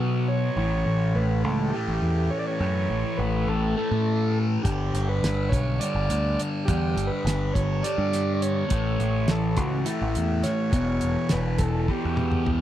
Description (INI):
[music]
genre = psychedelic rock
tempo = 206 BPM (eighths)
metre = 7/8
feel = straight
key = unclear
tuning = A4 = 439 Hz
[part]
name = combo organ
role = melody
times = 0.0-12.5 s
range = E4 to D5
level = -30 LUFS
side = right 2 dB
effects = spring reverb, slapback echo
[part]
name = fuzz guitar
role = riff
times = 0.0-12.6 s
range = E2 to B3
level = -28 LUFS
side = left 1 dB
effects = distortion, phaser
[part]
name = growling picked electric bass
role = bass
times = 0.0-12.6 s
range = E1 to B2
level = -25 LUFS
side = equal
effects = overdrive
[part]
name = damped 70s drum kit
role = drums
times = 4.7-12.6 s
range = hi-hat, kick drum, snare drum, toms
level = -26 LUFS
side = equal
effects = none
[sound]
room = little or no reverb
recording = dry, close 1970s-style studio recording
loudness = -22 LUFS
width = side -12 dB against mid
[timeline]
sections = 0.0-12.6 A section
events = drum fill 11.9-12.6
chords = 0.0 Bsus2; 0.6 A; 4.6 G; 8.7 A; 10.7 Em